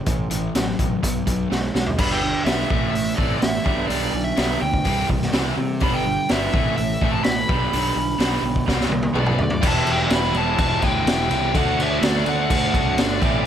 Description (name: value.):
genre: classic rock.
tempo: 126 BPM.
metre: 4/4.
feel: straight.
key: E minor.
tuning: A4 = 440 Hz.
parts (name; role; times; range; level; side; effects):
distorted electric guitar; riff; 0.0-13.5 s; G2 to F#4; -28 LUFS; left 14 dB; distortion.
raw garage guitar; riff; 0.0-13.5 s; E2 to G4; -26 LUFS; right 14 dB; overdrive.
fuzz picked electric bass; bass; 0.1-13.4 s; E1 to C3; -26 LUFS; equal; overdrive.
raw garage drum kit; drums; 0.1-13.3 s; crash cymbal, hi-hat, kick drum, snare drum, toms; -22 LUFS; equal; none.
fuzz lead guitar; melody; 2.0-13.5 s; D5 to B5; -25 LUFS; left 1 dB; distortion.
overdriven tonewheel organ; sustained chords; 9.6-13.5 s; C4 to G5; -36 LUFS; equal; none.
biting overdriven guitar; riff; 9.6-13.5 s; A2 to G4; -29 LUFS; equal; none.
room: small room ambience.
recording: none.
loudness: -18 LUFS.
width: side -9 dB against mid.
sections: 0.0-2.0 A section; 2.0-9.6 B section; 9.6-13.5 C section.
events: drum fill 1.5-2.0, 8.7-9.6.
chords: 0.1 A5; 1.0 B5; 2.0 G; 2.7 Am; 3.7 G/B; 4.9 C; 5.8 G; 6.5 Am; 7.5 G/B; 8.7 C5; 9.2 Bm; 9.6 Em; 11.5 D.